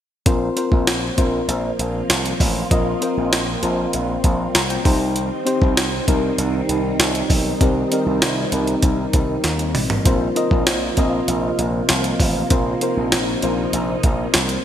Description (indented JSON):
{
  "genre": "1980s-style pop",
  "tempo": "98 BPM",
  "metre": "4/4",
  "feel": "straight",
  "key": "unclear",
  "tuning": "A4 = 440 Hz",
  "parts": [
    { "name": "mellow FM electric piano", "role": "accompaniment", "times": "0.3-14.6 s", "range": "C4 to Bb5", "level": "-22 LUFS", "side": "left 2 dB", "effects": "chorus" },
    { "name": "soft string machine", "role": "sustained chords", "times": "0.3-14.6 s", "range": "C3 to F4", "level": "-26 LUFS", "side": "right 2 dB", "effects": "phaser, ensemble chorus" },
    { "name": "slap bass with an envelope filter", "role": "bass", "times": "0.3-14.6 s", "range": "A1 to Eb2", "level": "-24 LUFS", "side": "equal", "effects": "none" },
    { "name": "jungle sampler-style drum kit", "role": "drums", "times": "0.3-14.6 s", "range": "hi-hat, kick drum, snare drum, toms", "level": "-19 LUFS", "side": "equal", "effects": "overdrive, gated reverb" }
  ],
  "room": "moderate lush hall reverb, RT60 2.6 s",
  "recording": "bright 1980s-style digital production",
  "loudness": "-17 LUFS",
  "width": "side -10 dB against mid",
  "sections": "0.3-14.6 A section",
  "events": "FM electric piano fill 4.2-5.2; drum fill 9.4-10.1",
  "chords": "0.3 Bbsus2; 4.9 Cm; 10.1 Bbsus2"
}